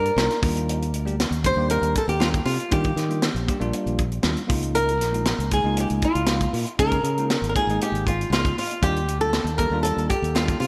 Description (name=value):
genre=electric jazz fusion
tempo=118 BPM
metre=4/4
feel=straight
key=Eb major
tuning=A4 = 440 Hz
part: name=flamenco guitar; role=melody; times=0.0-10.7 s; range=F4 to C5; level=-27 LUFS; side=equal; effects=subtle chorus, delay
part: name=modern bright fingered electric bass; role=bass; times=0.0-10.7 s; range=Ab1 to Eb3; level=-28 LUFS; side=equal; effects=none
part: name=tight funk drum kit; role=drums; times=0.1-10.7 s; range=hi-hat, kick drum, snare drum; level=-28 LUFS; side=equal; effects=gated reverb
part: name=bell-like tine electric piano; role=accompaniment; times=0.2-10.7 s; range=G3 to Ab4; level=-32 LUFS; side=equal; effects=none
room=moderate lush hall reverb, RT60 2.1 s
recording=bright 1980s-style digital production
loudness=-23 LUFS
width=mono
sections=0.0-10.7 A section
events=none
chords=0.4 Ebmaj7; 4.5 Db69; 8.8 Ebmaj7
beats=0.17 | 0.68 1.19 1.70 2.21 | 2.72 3.23 3.74 4.25 | 4.76 5.27 5.78 6.29 | 6.80 7.30 7.81 8.32 | 8.83 9.34 9.84 10.35